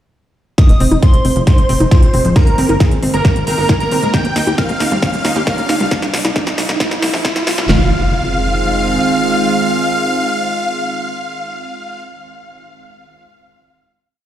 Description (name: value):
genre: uplifting trance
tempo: 135 BPM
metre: 4/4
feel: straight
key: F minor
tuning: A4 = 440 Hz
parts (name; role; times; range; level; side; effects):
- supersaw chords; melody; 0.6-12.0 s; Bb4 to G5; -20 LUFS; equal; sidechain pumping, low-pass filter, digital delay
- plucky unison lead; second line; 0.6-12.0 s; Bb5 to G6; -26 LUFS; equal; sidechain pumping, tape echo
- lush unison pad; sustained chords; 1.2-12.0 s; Eb3 to F4; -22 LUFS; right 2 dB; chorus, sidechain pumping
- analog pluck; arpeggios; 0.6-7.9 s; Eb3 to Bb4; -21 LUFS; right 2 dB; chorus, sidechain pumping, tape echo
- big-room dance drum kit; drums; 0.6-7.8 s; handclaps, kick drum, snare drum; -12 LUFS; equal; none
- big-room dance drum kit; drums; 0.6-7.7 s; congas, hi-hat, snare drum; -21 LUFS; left 1 dB; high-pass filter on snare, high-pass filter on hats, high-pass filter on perc, high-pass filter on room
- riser and impact; sound effects; 2.9-12.1 s; none; -22 LUFS; equal; none
- tight sequencer bass; bass; 0.7-9.0 s; Eb1 to Eb2; -19 LUFS; equal; sidechain pumping
room: light reverb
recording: played on a big sound system in a bare room, stone room reverb, high-pass filter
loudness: -12 LUFS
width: side -11 dB against mid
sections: 0.6-7.7 build; 7.7-11.2 final chord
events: build-up 0.6-7.7; drum fill 0.6-7.7; filter sweep on supersaw synth 0.6-5.9; filter sweep 0.6-7.7; riser 2.9-7.7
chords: 0.6 Fm7; 2.4 Abadd9; 4.1 Eb; 5.9 N.C.; 7.7 Fm7